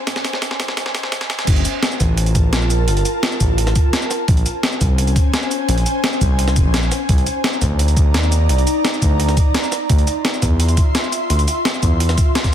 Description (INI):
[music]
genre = liquid drum and bass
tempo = 171 BPM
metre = 4/4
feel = straight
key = unclear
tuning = A4 = 439 Hz
[part]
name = ethereal airy pad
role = sustained chords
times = 0.0-12.5 s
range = Db4 to C6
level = -22 LUFS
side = equal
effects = ensemble chorus, built-in reverb
[part]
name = smooth gliding synth bass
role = bass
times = 0.1-12.2 s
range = F1 to E2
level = -17 LUFS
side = equal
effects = none
[part]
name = breakbeat sampler-style drum kit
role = drums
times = 0.1-12.5 s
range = crash cymbal, hi-hat, shaker, snare drum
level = -21 LUFS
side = equal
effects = none
[part]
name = electronic kick drum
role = drums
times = 1.5-12.5 s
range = none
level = -16 LUFS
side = equal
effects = none
[sound]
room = little or no reverb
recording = dense, heavily limited modern master, high-pass filter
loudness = -14 LUFS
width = side -10 dB against mid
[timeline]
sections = 0.0-1.5 A section; 1.5-12.5 B section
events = build-up 0.0-1.5; drum fill 0.0-1.5; drop 1.5-12.5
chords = 0.0 Bbm9; 1.5 Gm9; 4.1 Bbm9; 7.1 Cm9 (rootless); 9.7 Dm9 (rootless)